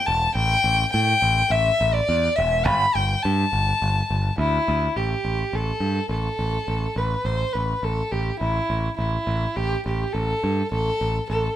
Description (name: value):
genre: post-rock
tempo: 104 BPM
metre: 4/4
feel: straight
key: unclear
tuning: A4 = 440 Hz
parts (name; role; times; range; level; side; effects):
- dark violin; melody; 0.0-11.6 s; E4 to B5; -22 LUFS; left 1 dB; none
- growling picked electric bass; bass; 0.1-11.5 s; E1 to A2; -24 LUFS; right 1 dB; overdrive
room: light reverb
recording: band playing live in one room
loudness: -20 LUFS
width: side -11 dB against mid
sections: 0.0-5.0 A section; 5.0-11.6 B section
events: none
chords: 0.0 A5; 2.7 Gsus2; 5.0 Gsus2/A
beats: | 0.36 0.94 1.51 2.08 | 2.66 3.23 3.81 4.38 | 4.95 5.53 6.10 6.68 | 7.26 7.83 8.41 8.98 | 9.56 10.14 10.71 11.29